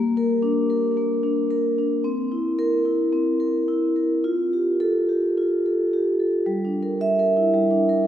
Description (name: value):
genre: classical, contemporary piece for solo vibraphone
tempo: 110 BPM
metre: 4/4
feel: rubato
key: G dorian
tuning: A4 = 439 Hz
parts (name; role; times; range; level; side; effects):
- vibraphone with soft mallets; solo; 0.0-8.1 s; G3 to E5; -19 LUFS; equal; none
room: wet cathedral reverb, RT60 4.3 s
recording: heard from further back in the room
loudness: -19 LUFS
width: side -10 dB against mid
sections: 0.0-6.5 A section; 6.5-8.1 B section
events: none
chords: 0.0 Bb; 2.0 C7; 4.2 Fadd9; 6.5 Gm6